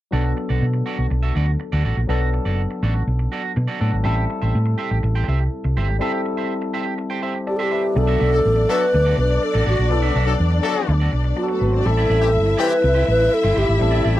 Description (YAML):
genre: disco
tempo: 123 BPM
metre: 4/4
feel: straight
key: unclear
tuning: A4 = 442 Hz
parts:
  - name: barky tine electric piano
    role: accompaniment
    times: 0.1-14.2 s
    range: F#3 to E5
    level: -26 LUFS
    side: left 3 dB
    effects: phaser
  - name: electric guitar at the edge of break-up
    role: accompaniment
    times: 0.1-14.2 s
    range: E4 to G5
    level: -28 LUFS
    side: right 7 dB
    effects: none
  - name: hollow-body short-scale fingered electric bass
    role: bass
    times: 0.1-14.2 s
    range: F#1 to B2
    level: -19 LUFS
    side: equal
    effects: none
  - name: mellow hollow alto flute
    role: melody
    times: 7.5-14.1 s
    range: F#4 to B4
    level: -19 LUFS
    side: right 1 dB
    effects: none
  - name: warm studio string section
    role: second line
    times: 8.0-14.2 s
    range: A3 to E5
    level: -25 LUFS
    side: left 4 dB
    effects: none
  - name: clear horn section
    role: stabs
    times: 8.3-14.2 s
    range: E3 to A4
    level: -23 LUFS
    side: left 6 dB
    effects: none
room: little or no reverb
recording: dry, close 1970s-style studio recording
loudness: -17 LUFS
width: side -14 dB against mid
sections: 0.1-8.0 A section; 8.0-14.2 B section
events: break 6.0-8.0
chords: 0.1 Bm7; 4.1 Am7; 8.0 Bm7; 11.9 Am7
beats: | 0.13 0.62 1.11 1.60 | 2.09 2.58 3.07 3.56 | 4.05 4.54 5.03 5.52 | 6.01 6.50 6.99 7.47 | 7.96 8.45 8.94 9.42 | 9.91 10.39 10.88 11.37 | 11.85 12.34 12.82 13.31 | 13.80